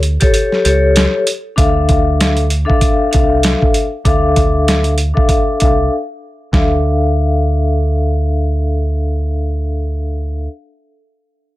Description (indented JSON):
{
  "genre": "hip hop, boom-bap hip-hop",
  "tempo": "97 BPM",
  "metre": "4/4",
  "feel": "swing 55% on 16ths",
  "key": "D harmonic minor",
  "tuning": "A4 = 441 Hz",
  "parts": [
    { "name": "deep dub fingered electric bass", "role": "bass", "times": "0.0-10.5 s", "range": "C2 to D2", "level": "-15 LUFS", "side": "right 1 dB", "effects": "none" },
    { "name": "boom bap sampler-style drum kit", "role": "drums", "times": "0.0-6.7 s", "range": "hi-hat, kick drum, snare drum", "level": "-14 LUFS", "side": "right 1 dB", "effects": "none" },
    { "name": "vibraphone with medium mallets", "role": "accompaniment", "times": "0.2-10.5 s", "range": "D4 to F5", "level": "-16 LUFS", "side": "left 2 dB", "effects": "cassette tape, high-pass filter, low-pass filter, plate reverb" }
  ],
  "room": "light reverb",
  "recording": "none",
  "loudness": "-12 LUFS",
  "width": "side -16 dB against mid",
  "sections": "0.0-1.6 A section; 1.6-6.5 B section; 6.5-9.0 C section",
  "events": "kick muted 0.3-1.6; filter sweep on vibraphone 1.6-6.5; break 5.9-6.5",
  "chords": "0.0 A7; 1.6 Dmadd9"
}